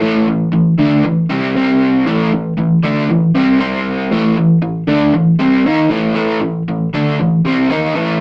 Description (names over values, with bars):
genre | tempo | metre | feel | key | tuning
rock | 117 BPM | 4/4 | straight | A minor | A4 = 441 Hz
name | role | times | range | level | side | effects
overdriven semi-hollow guitar | solo | 0.0-8.2 s | A2 to D#4 | -14 LUFS | equal | harmonic tremolo
room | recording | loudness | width
wet small room reverb, RT60 0.5 s | rough rehearsal-room recording, tube saturation | -14 LUFS | mono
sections
0.0-8.2 A section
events
none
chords
0.0 Am; 1.6 C5; 2.1 Am; 3.6 C5; 4.1 Am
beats
| 0.01 0.53 1.04 1.55 | 2.06 2.58 3.09 3.60 | 4.11 4.62 5.14 5.65 | 6.16 6.67 7.18 7.70